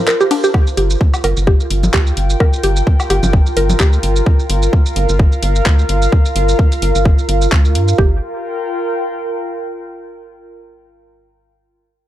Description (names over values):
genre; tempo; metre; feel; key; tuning
minimal techno; 129 BPM; 4/4; swing 56% on 16ths; G minor; A4 = 437 Hz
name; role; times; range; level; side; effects
warbly tape-like pad; texture; 0.0-9.8 s; F4 to G5; -20 LUFS; equal; chorus, built-in reverb, sidechain pumping
mallet-like synth pluck; riff; 0.1-3.8, 8.0-8.2 s; D4 to Bb4; -18 LUFS; equal; chorus, sidechain pumping, dub echo
garage drum kit; drums; 0.1-8.0 s; handclaps, hi-hat, ride cymbal, shaker; -22 LUFS; equal; studio reverb
woodblock and congas; percussion; 0.3-3.8 s; none; -22 LUFS; left 1 dB; overdrive, studio reverb, digital delay
electronic kick drum; drums; 0.5-8.1 s; none; -12 LUFS; equal; studio reverb
rubbery square bass; bass; 0.8-8.2 s; G1 to G2; -15 LUFS; equal; sidechain pumping
room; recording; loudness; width
little or no reverb; none; -12 LUFS; side -13 dB against mid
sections
0.5-8.0 A section; 8.0-9.8 B section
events
break 0.0-0.5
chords
0.0 Gm7 (rootless); 0.5 Gm7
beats
0.08 | 0.54 1.01 1.47 1.94 | 2.40 2.87 3.33 3.80 | 4.26 4.73 5.19 5.66 | 6.12 6.59 7.05 7.52 | 7.99 8.45 8.91 9.38